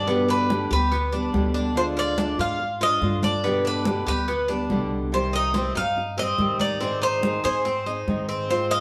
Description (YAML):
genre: latin, Cuban son and guajira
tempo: 143 BPM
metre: 4/4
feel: straight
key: unclear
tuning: A4 = 439 Hz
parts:
  - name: Cuban tres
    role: melody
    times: 0.0-8.8 s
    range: B4 to F5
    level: -27 LUFS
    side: equal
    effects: none
  - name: nylon-string guitar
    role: accompaniment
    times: 0.0-8.8 s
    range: B2 to Ab4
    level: -30 LUFS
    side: equal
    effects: none
  - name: Cuban tres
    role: arpeggios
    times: 0.0-8.8 s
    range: B3 to Ab4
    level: -32 LUFS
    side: equal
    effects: none
  - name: upright bass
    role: bass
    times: 0.0-8.8 s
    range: C2 to Ab2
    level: -32 LUFS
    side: equal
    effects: none
  - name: congas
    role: percussion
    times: 0.1-8.8 s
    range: none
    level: -32 LUFS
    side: equal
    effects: none
room: wet large studio reverb, RT60 0.9 s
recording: band playing live in one room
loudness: -24 LUFS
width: mono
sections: 0.0-8.8 A section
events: none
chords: 0.1 G; 1.8 Ddim; 3.4 G; 5.1 Cm; 6.8 Ab